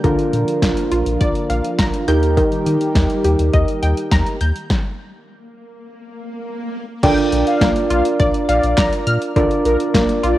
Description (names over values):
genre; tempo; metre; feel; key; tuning
synth-pop; 103 BPM; 4/4; straight; Bb major; A4 = 440 Hz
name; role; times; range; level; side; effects
soft electric-piano-like synth keys; accompaniment; 0.0-10.4 s; D4 to D5; -19 LUFS; right 2 dB; chorus, cassette tape
lush unison pad; sustained chords; 0.0-4.7 s; D3 to G4; -26 LUFS; equal; chorus, cassette tape
wide unison pluck; arpeggios; 0.0-10.4 s; D3 to G6; -23 LUFS; left 1 dB; cassette tape, tape echo
round analog bass; bass; 0.0-10.3 s; Bb1 to Eb3; -19 LUFS; equal; none
deep house drum kit; drums; 0.0-10.4 s; crash cymbal, handclaps, hi-hat, kick drum, snare drum; -19 LUFS; equal; overdrive, cassette tape
swell; sound effects; 5.4-7.0 s; none; -32 LUFS; equal; none
mellow synth brass; second line; 7.0-10.4 s; Bb4 to G5; -22 LUFS; left 1 dB; chorus, cassette tape, tape echo
room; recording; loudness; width
light reverb, digital ambience; home recording on cassette; -14 LUFS; side -15 dB against mid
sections
0.0-7.0 A section; 7.0-10.4 B section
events
stop 4.7-7.0; swell 5.4-7.0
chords
0.0 Bb; 2.1 Eb; 4.7 N.C.; 7.0 Bb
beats
| 0.04 0.62 1.21 1.79 | 2.37 2.95 3.54 4.12 | 4.70 5.28 5.87 6.45 | 7.03 7.61 8.20 8.78 | 9.36 9.94